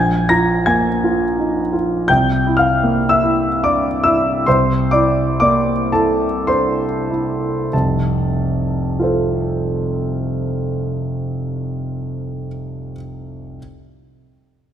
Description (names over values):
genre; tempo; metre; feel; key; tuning
classical, impressionist solo piano; 46-86 BPM; 3/4; rubato; F major; A4 = 440 Hz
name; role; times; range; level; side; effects
warm concert grand piano; solo; 0.0-13.6 s; F1 to Bb6; -15 LUFS; equal; none
room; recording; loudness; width
moderate concert hall reverb, RT60 2.3 s; none; -15 LUFS; side -9 dB against mid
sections
0.0-7.7 A section; 7.7-11.5 B section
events
slowing down 1.0-7.7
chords
0.0 Bb5; 2.1 C9; 4.5 C13; 7.7 F